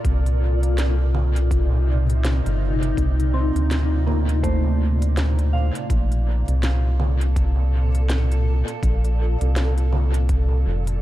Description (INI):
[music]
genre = ambient dub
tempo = 82 BPM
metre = 4/4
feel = swing 59% on 16ths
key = C dorian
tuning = A4 = 441 Hz
[part]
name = granular cloud pad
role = sustained chords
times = 0.0-11.0 s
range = Bb2 to D5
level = -27 LUFS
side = left 1 dB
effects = built-in reverb
[part]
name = soft synth bell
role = arpeggios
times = 0.0-11.0 s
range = A3 to F5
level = -31 LUFS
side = right 4 dB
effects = chorus, phaser, dub echo
[part]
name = round analog bass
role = bass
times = 0.0-11.0 s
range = F1 to D2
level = -19 LUFS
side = equal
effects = none
[part]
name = electronic kick drum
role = drums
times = 0.0-10.5 s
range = none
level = -24 LUFS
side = equal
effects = none
[part]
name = organic electronic drum kit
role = drums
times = 0.0-11.0 s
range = congas, hi-hat, snare drum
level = -32 LUFS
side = right 2 dB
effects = dub echo
[sound]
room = little or no reverb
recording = none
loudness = -18 LUFS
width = side -15 dB against mid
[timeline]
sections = 0.0-11.0 A section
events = none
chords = 0.0 Cm11; 5.9 Bbmaj7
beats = | 0.05 0.78 1.51 2.24 | 2.97 3.71 4.44 5.17 | 5.90 6.63 7.36 8.10 | 8.83 9.56 10.29